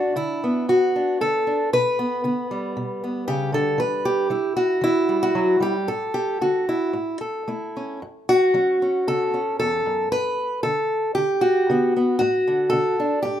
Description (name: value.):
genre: folk, solo fingerstyle acoustic guitar.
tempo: 115 BPM.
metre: 4/4.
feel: rubato.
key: unclear.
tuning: A4 = 439 Hz.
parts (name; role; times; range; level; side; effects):
fingerpicked acoustic archtop guitar; solo; 0.0-13.4 s; E2 to B4; -19 LUFS; equal; none.
room: light reverb.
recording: minimal, uncompressed stereo recording.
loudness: -19 LUFS.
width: side -10 dB against mid.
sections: 0.0-13.4 A section.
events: none.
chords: 0.0 Bm; 1.7 G/B; 3.8 Em; 5.9 Asus4; 6.9 A; 8.0 F#m; 10.1 G; 12.2 D/A.